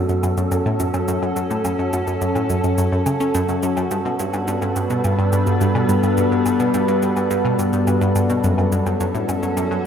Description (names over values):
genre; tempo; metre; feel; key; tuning
ambient, sequencer-driven space music; 106 BPM; 4/4; straight; F# phrygian; A4 = 439 Hz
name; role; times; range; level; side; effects
evolving wavetable pad; sustained chords; 0.0-9.9 s; G3 to B4; -21 LUFS; left 1 dB; chorus, built-in reverb
analog pluck; riff; 0.0-9.8 s; F#2 to C#4; -20 LUFS; equal; chorus, phaser, ping-pong delay
wind-like tuned noise texture; texture; 0.0-9.9 s; A4; -29 LUFS; right 4 dB; built-in reverb
cabasa and woodblock; percussion; 0.1-9.7 s; none; -33 LUFS; left 1 dB; ping-pong delay
room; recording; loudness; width
wet concert hall reverb, RT60 2.4 s; none; -17 LUFS; side -8 dB against mid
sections
0.0-9.9 A section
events
none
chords
0.0 F#m; 3.9 Gmaj7; 8.4 F#m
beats
0.51 1.08 | 1.65 2.21 2.78 3.34 | 3.91 4.48 5.04 5.61 | 6.17 6.74 7.31 7.87 | 8.44 9.01 9.57